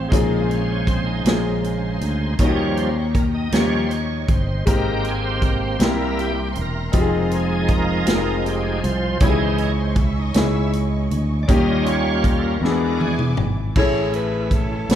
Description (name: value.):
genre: slow gospel.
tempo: 53 BPM (dotted quarters).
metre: 6/8.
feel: straight.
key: unclear.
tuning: A4 = 441 Hz.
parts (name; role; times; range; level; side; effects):
clear grand piano; accompaniment; 0.0-15.0 s; Ab2 to Bb4; -25 LUFS; left 4 dB; none.
bright tonewheel organ; sustained chords; 0.0-15.0 s; Db3 to Eb5; -24 LUFS; right 2 dB; slow rotary speaker, overdrive, chorus vibrato.
warm studio string section; sustained chords; 0.0-13.7 s; Db5 to D6; -35 LUFS; right 2 dB; none.
fingered electric bass; bass; 0.0-15.0 s; E1 to E2; -22 LUFS; equal; none.
natural country drum kit; drums; 0.1-15.0 s; crash cymbal, hi-hat, kick drum, snare drum, toms; -21 LUFS; equal; none.
clear saxophone section; melody; 13.8-15.0 s; C#4 to C#5; -24 LUFS; equal; none.
room: moderate recital hall reverb, RT60 1.6 s.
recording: recorded in a church or concert hall.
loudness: -17 LUFS.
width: side -10 dB against mid.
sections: 0.0-13.8 A section; 13.8-15.0 B section.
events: tonewheel organ solo 0.0-13.8; drum fill 12.6-13.8.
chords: 0.1 Bbm7; 2.4 Eb7; 4.7 Abmaj7; 5.8 C7; 6.9 Fm7; 9.2 Dbmadd9; 11.5 Eb7; 12.6 E7; 13.8 Amaj7.